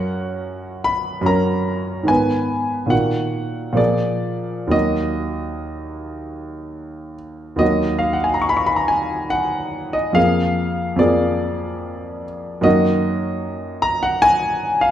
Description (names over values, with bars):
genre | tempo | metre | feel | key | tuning
classical, romantic nocturne for solo piano | 61-78 BPM | 3/4 | rubato | Eb minor | A4 = 441 Hz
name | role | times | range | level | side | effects
warm concert grand piano | solo | 0.0-14.9 s | Eb2 to Db6 | -18 LUFS | equal | none
room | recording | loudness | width
moderate recital hall reverb, RT60 1.4 s | dark, warm production | -17 LUFS | side -10 dB against mid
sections
0.0-7.6 A section; 7.6-14.9 A section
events
none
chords
0.0 Gb; 2.1 Abm; 2.9 Ebm/Bb; 3.8 Bb7; 4.7 Ebm; 10.2 Bb7/F; 12.7 Ebm/Gb